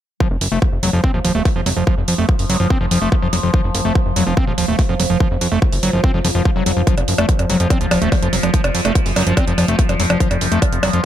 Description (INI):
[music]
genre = psychedelic trance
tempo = 144 BPM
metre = 4/4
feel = straight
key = unclear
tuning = A4 = 442 Hz
[part]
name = overtone-sweeping drone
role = sustained chords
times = 0.7-11.1 s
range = F3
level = -24 LUFS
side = left 1 dB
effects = chorus, built-in reverb, sidechain pumping
[part]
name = overdriven acid bass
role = riff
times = 0.2-11.0 s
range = F3 to C4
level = -20 LUFS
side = moving between left 7 dB and right 7 dB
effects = distortion, auto-pan, sidechain pumping, digital delay
[part]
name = electronic kick drum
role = drums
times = 0.2-10.7 s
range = none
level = -17 LUFS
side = equal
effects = none
[part]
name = fat analog bass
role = bass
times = 0.3-11.0 s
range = Eb1 to F2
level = -20 LUFS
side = equal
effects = none
[part]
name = electronic hi-hat and percussion blips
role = drums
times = 0.4-11.0 s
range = none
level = -22 LUFS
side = right 3 dB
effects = none
[sound]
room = digital ambience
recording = none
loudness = -14 LUFS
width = side -11 dB against mid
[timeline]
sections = 0.2-11.1 A section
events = none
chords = 0.2 F5